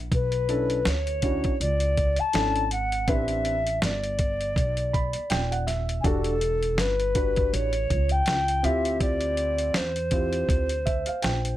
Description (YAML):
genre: hip hop, jazz-hop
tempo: 81 BPM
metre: 4/4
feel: swing 58% on 16ths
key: B phrygian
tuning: A4 = 440 Hz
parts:
  - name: upright bass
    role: bass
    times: 0.0-11.6 s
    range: D#1 to E2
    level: -28 LUFS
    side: equal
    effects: none
  - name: mellow alto ocarina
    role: melody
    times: 0.1-11.6 s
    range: A4 to A5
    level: -27 LUFS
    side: left 1 dB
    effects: plate reverb
  - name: dusty soul sampler-style drum kit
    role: drums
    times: 0.1-11.6 s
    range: hi-hat, kick drum, snare drum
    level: -28 LUFS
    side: equal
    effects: none
  - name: dark concert grand piano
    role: accompaniment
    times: 0.5-11.6 s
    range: C4 to B5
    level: -30 LUFS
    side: right 1 dB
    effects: plate reverb
room: light reverb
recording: none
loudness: -23 LUFS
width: side -13 dB against mid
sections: 0.1-11.6 A section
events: grand piano fill 4.6-6.0, 10.5-11.6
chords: 0.1 Bm11; 3.1 Am11; 6.0 Em11; 8.6 Dm11